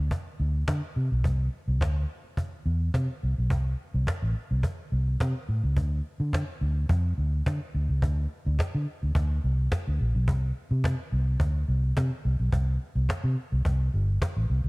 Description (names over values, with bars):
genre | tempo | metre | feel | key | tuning
disco | 106 BPM | 4/4 | straight | unclear | A4 = 440 Hz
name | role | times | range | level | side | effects
vintage muted fingered electric bass | bass | 0.0-14.7 s | G1 to D3 | -25 LUFS | equal | none
cajon | drums | 0.1-14.7 s | none | -31 LUFS | equal | none
room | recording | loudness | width
studio ambience | dark, warm production | -25 LUFS | side -26 dB against mid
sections
0.0-5.8 A section; 5.8-14.7 B section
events
none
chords
none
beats
0.11 0.68 | 1.24 1.81 2.37 2.94 | 3.50 4.07 4.63 5.20 | 5.76 6.33 6.89 7.46 | 8.02 8.59 9.15 9.71 | 10.28 10.84 11.40 11.97 | 12.53 13.09 13.65 14.21